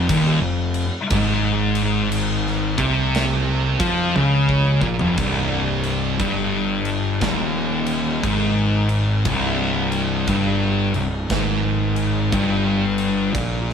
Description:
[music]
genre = stoner and doom metal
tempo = 59 BPM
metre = 4/4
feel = swing 64% on 8ths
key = C minor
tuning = A4 = 441 Hz
[part]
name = thick fuzz guitar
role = riff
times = 0.0-13.7 s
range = C2 to F3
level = -21 LUFS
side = left 5 dB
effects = distortion
[part]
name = thick fuzz guitar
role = riff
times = 0.0-13.7 s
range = C2 to F3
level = -24 LUFS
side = right 8 dB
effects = distortion
[part]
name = fuzz picked electric bass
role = bass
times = 0.0-13.7 s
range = C1 to F2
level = -26 LUFS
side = right 1 dB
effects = overdrive
[part]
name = big rock drum kit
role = drums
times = 0.1-13.7 s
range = crash cymbal, kick drum, snare drum, toms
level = -27 LUFS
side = equal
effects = none
[sound]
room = moderate stone room reverb, RT60 0.9 s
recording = band playing live in one room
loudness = -18 LUFS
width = side -7 dB against mid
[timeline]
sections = 0.0-5.2 A section; 5.2-13.7 B section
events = drum fill 4.2-5.2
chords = 0.0 F5; 5.2 Cm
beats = 0.10 | 1.11 2.13 3.15 4.16 | 5.18 6.20 7.22 8.24 | 9.26 10.29 11.31 12.34 | 13.36

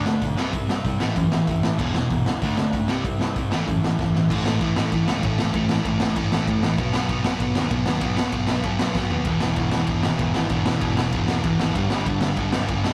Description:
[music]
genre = punk rock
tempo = 193 BPM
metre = 4/4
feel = straight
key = unclear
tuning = A4 = 437 Hz
[part]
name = fuzz guitar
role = riff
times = 0.0-4.3, 9.3-12.9 s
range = E2 to D4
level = -33 LUFS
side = equal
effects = distortion
[part]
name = sludgy distorted guitar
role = riff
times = 0.0-12.9 s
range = E2 to D4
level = -29 LUFS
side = equal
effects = overdrive
[part]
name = sludgy distorted guitar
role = riff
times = 0.0-12.9 s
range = E2 to D4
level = -29 LUFS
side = equal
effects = overdrive
[part]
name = growling picked electric bass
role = bass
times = 0.0-12.9 s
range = E1 to B2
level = -31 LUFS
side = equal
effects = overdrive
[part]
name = raw garage drum kit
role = drums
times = 0.1-12.9 s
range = crash cymbal, hi-hat, kick drum, snare drum, toms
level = -27 LUFS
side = equal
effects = none
[sound]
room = light reverb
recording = rough rehearsal-room recording, tube saturation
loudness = -22 LUFS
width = mono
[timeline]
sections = 0.0-4.3 A section; 4.3-12.9 B section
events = drum fill 4.0-4.3, 9.0-9.3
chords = 0.4 C5; 1.0 A5; 1.8 E5; 2.4 D5; 2.9 C5; 3.5 A5; 6.8 B; 9.3 E; 11.7 G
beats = 0.22 | 0.54 0.85 1.17 1.48 | 1.79 2.11 2.42 2.73 | 3.04 3.36 3.67 3.98 | 4.29 4.61 4.92 5.23 | 5.54 5.85 6.16 6.47 | 6.78 7.09 7.41 7.71 | 8.03 8.34 8.65 8.96 | 9.27 9.58 9.89 10.20 | 10.51 10.82 11.13 11.44 | 11.75 12.06 12.37 12.68

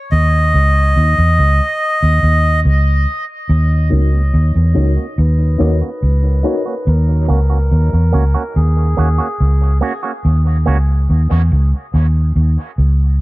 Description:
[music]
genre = reggae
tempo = 71 BPM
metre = 4/4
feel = straight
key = Eb phrygian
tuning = A4 = 440 Hz
[part]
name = melodica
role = melody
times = 0.1-9.8 s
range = Ab4 to Eb5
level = -20 LUFS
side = equal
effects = low-pass filter, dub echo
[part]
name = vintage muted fingered electric bass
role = bass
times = 0.1-13.2 s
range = Db2 to Fb2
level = -12 LUFS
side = equal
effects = none
[part]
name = electric guitar with an envelope filter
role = accompaniment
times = 3.9-10.8 s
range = Bb3 to Gb4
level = -25 LUFS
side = right 6 dB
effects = harmonic tremolo, low-pass filter, dub echo
[part]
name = dark baby grand piano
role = stabs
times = 3.9-6.7 s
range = Eb4 to Db5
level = -24 LUFS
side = left 4 dB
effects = low-pass filter, dub echo
[sound]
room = studio reverb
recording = echo-heavy mix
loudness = -12 LUFS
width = side -19 dB against mid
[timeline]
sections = 0.0-3.5 A section; 3.5-13.2 B section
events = break 0.0-3.5; filter sweep 3.5-13.2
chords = 0.0 Dbsus2; 3.5 Ebm7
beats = | 0.11 0.95 1.80 2.64 | 3.48 4.33 5.17 6.02 | 6.86 7.71 8.55 9.39 | 10.24 11.08 11.93 12.77

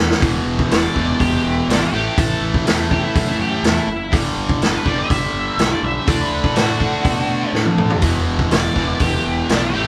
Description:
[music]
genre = blues rock power trio and southern rock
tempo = 123 BPM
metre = 4/4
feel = straight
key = unclear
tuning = A4 = 440 Hz
[part]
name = fuzz fingered electric bass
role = bass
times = 0.0-9.9 s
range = E1 to B2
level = -27 LUFS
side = equal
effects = overdrive
[part]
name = vintage drum kit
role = drums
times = 0.1-9.6 s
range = hi-hat, kick drum, snare drum, toms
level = -21 LUFS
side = equal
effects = none
[part]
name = distorted electric guitar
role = riff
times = 0.2-9.9 s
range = E2 to D4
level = -23 LUFS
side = equal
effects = overdrive
[part]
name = octave-fuzz lead guitar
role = melody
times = 0.7-9.9 s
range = D4 to E5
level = -25 LUFS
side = equal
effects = distortion
[sound]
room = moderate studio reverb, RT60 0.6 s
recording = band playing live in one room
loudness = -18 LUFS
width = mono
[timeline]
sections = 0.2-9.9 A section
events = drum fill 0.0, 7.5-8.0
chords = 0.2 E5; 1.9 A5; 4.1 G; 6.1 D; 8.0 E5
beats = | 0.22 0.71 1.20 1.69 | 2.17 2.66 3.15 3.64 | 4.12 4.61 5.10 5.59 | 6.07 6.56 7.05 7.54 | 8.03 8.52 9.00 9.49

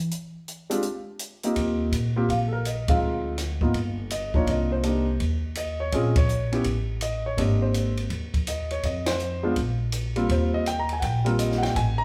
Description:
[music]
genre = jazz piano trio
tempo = 165 BPM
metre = 4/4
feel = swing 64% on 8ths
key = Eb major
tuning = A4 = 441 Hz
[part]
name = upright bass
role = bass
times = 0.0-12.0 s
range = G1 to Bb2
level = -29 LUFS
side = equal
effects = none
[part]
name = compact cocktail drum kit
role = drums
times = 0.1-11.9 s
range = hi-hat, kick drum, ride cymbal, snare drum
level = -32 LUFS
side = equal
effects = none
[part]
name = warm concert grand piano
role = melody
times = 0.7-12.0 s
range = G3 to Bb5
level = -29 LUFS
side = equal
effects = none
[sound]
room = wet large studio reverb, RT60 1.2 s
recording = band playing live in one room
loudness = -25 LUFS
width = mono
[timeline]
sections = 0.0-1.6 A section; 1.6-12.0 B section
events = upright bass solo 0.0-1.6; band accent 2.8, 6.1, 9.0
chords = 0.1 N.C.; 1.6 Eb69; 3.0 Dm7b5; 3.7 N.C.; 4.5 Cm9; 5.9 Bbm7; 6.7 N.C.; 7.4 Abmaj9#11; 8.8 F5; 9.6 Bb5; 10.3 Eb69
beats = | 0.11 0.47 0.83 1.20 | 1.56 1.92 2.29 2.65 | 3.01 3.38 3.74 4.11 | 4.47 4.83 5.20 5.56 | 5.92 6.29 6.65 7.01 | 7.38 7.74 8.10 8.47 | 8.83 9.19 9.56 9.92 | 10.28 10.65 11.01 11.38 | 11.74

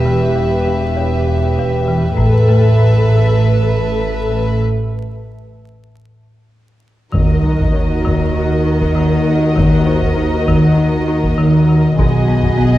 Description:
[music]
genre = cinematic, suspense film score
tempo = 99 BPM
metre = 4/4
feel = straight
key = unclear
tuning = A4 = 440 Hz
[part]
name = warm symphonic violin section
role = melody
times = 0.0-12.8 s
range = Eb5 to E5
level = -26 LUFS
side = left 2 dB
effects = none
[part]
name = warm symphonic violin section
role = second line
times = 0.0-12.8 s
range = G#4 to B4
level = -25 LUFS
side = left 2 dB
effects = none
[part]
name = dark symphonic viola section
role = accompaniment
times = 0.0-12.8 s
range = Gb4 to A4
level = -22 LUFS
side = equal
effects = none
[part]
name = pulsing gated texture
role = sustained chords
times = 0.0-12.8 s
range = B4 to Bb5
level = -26 LUFS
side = left 1 dB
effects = chorus, built-in reverb
[part]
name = rich studio double bass section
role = bass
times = 0.0-12.8 s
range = E1 to Eb2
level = -18 LUFS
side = right 2 dB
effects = none
[part]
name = warm symphonic cello section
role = bass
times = 0.0-12.8 s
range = E2 to Eb3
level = -20 LUFS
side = right 1 dB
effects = none
[part]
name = celesta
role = texture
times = 0.0-12.0 s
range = B4 to Db5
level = -29 LUFS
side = left 4 dB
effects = none
[part]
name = folk marimba with hard mallets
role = riff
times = 0.1-12.8 s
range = E2 to Eb4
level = -16 LUFS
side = left 1 dB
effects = none
[part]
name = taiko ensemble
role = drums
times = 2.2-3.3, 7.1-12.8 s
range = none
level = -20 LUFS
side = equal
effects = none
[part]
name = sub drop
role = sound effects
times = 7.1-9.6 s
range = none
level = -21 LUFS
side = equal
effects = none
[sound]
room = moderate scoring stage reverb, RT60 1.9 s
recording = dark, warm production, vinyl crackle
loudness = -12 LUFS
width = side -14 dB against mid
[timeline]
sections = 0.0-7.1 A section; 7.1-12.8 B section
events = break 4.6-7.1; impact 7.1-9.6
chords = 0.0 Em; 2.2 Asus2; 4.6 N.C.; 7.1 Ebm; 12.0 B6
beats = 0.36 0.97 1.58 | 2.19 2.79 3.38 3.99 | 4.62 5.25 5.88 6.51 | 7.14 7.75 8.36 8.97 | 9.57 10.18 10.79 11.39 | 11.99 12.59

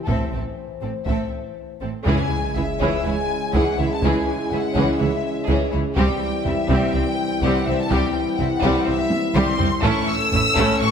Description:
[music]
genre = cinematic, epic orchestral film score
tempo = 124 BPM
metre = 4/4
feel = straight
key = unclear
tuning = A4 = 440 Hz
[part]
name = mellow French horn section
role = sustained chords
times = 0.0-10.9 s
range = E3 to C5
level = -27 LUFS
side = left 4 dB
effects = none
[part]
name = warm symphonic violin section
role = melody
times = 0.1-10.9 s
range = A4 to E6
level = -26 LUFS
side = left 4 dB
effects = none
[part]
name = rich studio violin section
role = second line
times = 0.1-10.9 s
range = G3 to E5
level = -28 LUFS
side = left 2 dB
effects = none
[part]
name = rich symphonic viola section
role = accompaniment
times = 0.1-10.9 s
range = E3 to E4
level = -26 LUFS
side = right 1 dB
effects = none
[part]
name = clear symphonic double bass section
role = bass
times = 0.1-10.9 s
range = A1 to C#2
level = -28 LUFS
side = right 3 dB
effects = none
[part]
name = rich symphonic cello section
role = bass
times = 0.1-10.9 s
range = C2 to A2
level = -28 LUFS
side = right 3 dB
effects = none
[part]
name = taiko ensemble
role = drums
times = 0.1-10.9 s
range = none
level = -26 LUFS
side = equal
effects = none
[part]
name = warm trombone section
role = sustained chords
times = 2.1-10.9 s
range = C#3 to A3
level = -28 LUFS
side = right 4 dB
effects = none
[part]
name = timpani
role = percussion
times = 2.1-2.8 s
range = C#3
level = -29 LUFS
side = left 2 dB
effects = none
[part]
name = sub drop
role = sound effects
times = 2.2-4.0 s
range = none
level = -33 LUFS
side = equal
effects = none
[sound]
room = moderate scoring stage reverb, RT60 1.7 s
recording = none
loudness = -18 LUFS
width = side -7 dB against mid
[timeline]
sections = 0.0-2.1 A section; 2.1-10.9 B section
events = impact 2.1-4.0; drum fill 9.1-9.8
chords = 0.1 Am; 2.1 C#m; 6.0 C; 9.8 A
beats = | 0.09 0.58 1.08 1.58 | 2.07 2.56 3.05 3.54 | 4.03 4.52 5.00 5.49 | 5.97 6.46 6.94 7.43 | 7.91 8.40 8.88 9.36 | 9.84 10.32 10.81

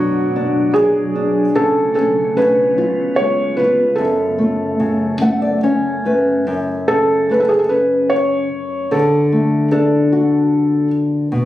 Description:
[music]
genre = children's music, lullaby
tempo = 74 BPM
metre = 3/4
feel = rubato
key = F# harmonic minor, F# minor from 6.5 s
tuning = A4 = 440 Hz
[part]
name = felt-muted upright piano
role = melody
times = 0.0-10.9 s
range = F#4 to C#5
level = -16 LUFS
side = right 1 dB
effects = none
[part]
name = nylon-string guitar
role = accompaniment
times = 0.0-11.5 s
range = F#2 to F#5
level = -17 LUFS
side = left 1 dB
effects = none
[part]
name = glassy FM pad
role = sustained chords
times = 0.0-6.4 s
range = F#2 to E#4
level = -24 LUFS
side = equal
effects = ensemble chorus, built-in reverb
[sound]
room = light reverb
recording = recorded on a phone in the room, studio ambience, compression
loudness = -13 LUFS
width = side -14 dB against mid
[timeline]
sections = 0.0-6.5 A section; 6.5-11.5 B section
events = nylon-string guitar fill 4.8-6.5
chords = 0.0 Bm; 1.6 F#m/C#; 2.4 C#7; 4.0 F#m; 8.9 D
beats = 0.76 | 1.57 2.38 3.19 | 3.98 4.79 5.63 | 6.46 7.29 8.10 | 8.91 9.71 10.52 | 11.31

